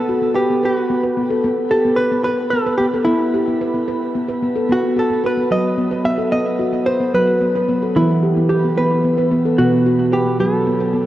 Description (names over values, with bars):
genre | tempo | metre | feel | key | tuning
world meditative, meditative tuned percussion | 74 BPM (dotted quarters) | 6/8 | straight | unclear | A4 = 440 Hz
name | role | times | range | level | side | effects
hollow-body jazz guitar | melody | 0.0-11.1 s | E4 to E5 | -19 LUFS | equal | shimmer reverb, tape echo
handpan | arpeggios | 0.0-11.1 s | B2 to B4 | -17 LUFS | equal | shimmer reverb, tape echo
room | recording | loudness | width
wet lush hall reverb, RT60 2.8 s | home recording on cassette | -15 LUFS | side -14 dB against mid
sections
0.0-11.1 A section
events
none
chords
0.0 B5; 1.4 E5; 4.7 B; 8.0 E5; 9.6 B5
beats
0.63 | 1.44 2.26 | 3.07 3.88 | 4.70 5.51 | 6.33 7.14 | 7.96 8.77 | 9.59 10.40